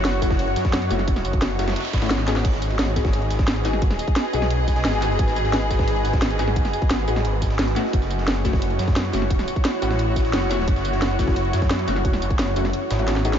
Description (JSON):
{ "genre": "dark technical drum and bass", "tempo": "175 BPM", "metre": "4/4", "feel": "straight", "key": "unclear", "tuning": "A4 = 441 Hz", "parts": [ { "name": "deep dark ambient pad", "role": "sustained chords", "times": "0.0-13.4 s", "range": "E4 to G#5", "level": "-28 LUFS", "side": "right 1 dB", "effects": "chorus, built-in reverb, sidechain pumping" }, { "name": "snarling distorted saw bass", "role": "bass", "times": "0.0-13.4 s", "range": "F#1 to F#2", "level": "-24 LUFS", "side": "equal", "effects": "distortion, overdrive, sidechain pumping" }, { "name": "breakbeat sampler-style drum kit", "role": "drums", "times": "0.0-13.4 s", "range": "hi-hat, ride cymbal, snare drum", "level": "-35 LUFS", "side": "right 1 dB", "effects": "high-pass filter on cymbals, small room ambience, high-pass filter on snare, high-pass filter on hats, high-pass filter on room" }, { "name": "drum and bass drum kit", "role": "drums", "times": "0.0-13.4 s", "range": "crash cymbal, hi-hat, snare drum, tambourine", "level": "-26 LUFS", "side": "equal", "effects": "small room ambience" }, { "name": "warm studio string section", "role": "texture", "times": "0.0-13.4 s", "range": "F#4 to D#5", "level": "-30 LUFS", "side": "left 1 dB", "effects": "sidechain pumping" }, { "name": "orchestra-hit-like synth stab", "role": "stabs", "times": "0.2-13.4 s", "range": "A3 to G#4", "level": "-30 LUFS", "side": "left 4 dB", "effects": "built-in reverb, analog delay" }, { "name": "electronic kick drum", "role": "drums", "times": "0.2-12.4 s", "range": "none", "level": "-21 LUFS", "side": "equal", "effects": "small room ambience" }, { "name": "noise sweep", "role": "sound effects", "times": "1.6-2.4 s", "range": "none", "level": "-39 LUFS", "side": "right 5 dB", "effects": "none" } ], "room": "light reverb, digital ambience", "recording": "nothing above 7.5 kHz", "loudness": "-19 LUFS", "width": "side -9 dB against mid", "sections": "0.0-13.4 A section", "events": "noise sweep 1.6-2.4; drum fill 2.2, 13.1-13.4; kick drops out 12.7-13.4", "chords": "0.0 F#m7; 2.4 G#m7; 7.9 F#m7" }